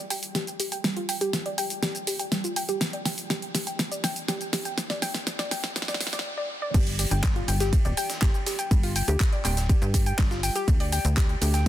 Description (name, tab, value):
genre	progressive house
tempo	122 BPM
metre	4/4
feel	straight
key	unclear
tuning	A4 = 441 Hz
part	soft round pluck	arpeggios	0.0-11.7 s	G3 to G5	-31 LUFS	equal	chorus, sidechain pumping, digital delay
part	pop drum kit	drums	0.1-11.7 s	crash cymbal, handclaps, hi-hat, shaker, snare drum	-29 LUFS	equal	sidechain pumping on hats, sidechain pumping on perc, sidechain pumping on cymbals
part	tight sequencer bass	bass	6.7-11.7 s	D1 to G2	-26 LUFS	equal	sidechain pumping
part	breakbeat sampler-style drum kit	drums	6.7-11.7 s	hi-hat, ride cymbal, snare drum	-38 LUFS	right 2 dB	high-pass filter on cymbals, low-pass filter on cymbals, soft clipping on snare, high-pass filter on snare, low-pass filter on snare, high-pass filter on hats, low-pass filter on hats, high-pass filter on room, low-pass filter on room
part	electronic kick drum	drums	6.7-11.7 s	none	-22 LUFS	equal	none
room	little or no reverb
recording	dense, heavily limited modern master, high-pass filter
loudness	-24 LUFS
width	side -13 dB against mid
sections	0.0-6.7 A section; 6.7-11.7 B section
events	build-up 0.0-6.7; drum fill 0.0-6.3; filter sweep on synth pluck 0.0-6.7; break 6.3-6.7; drop 6.7-11.7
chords	0.0 G5; 10.7 N.C.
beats	0.35 | 0.84 1.33 1.82 2.32 | 2.81 3.30 3.79 4.28 | 4.78 5.27 5.76 6.25 | 6.74 7.24 7.73 8.22 | 8.71 9.20 9.69 10.19 | 10.68 11.17 11.66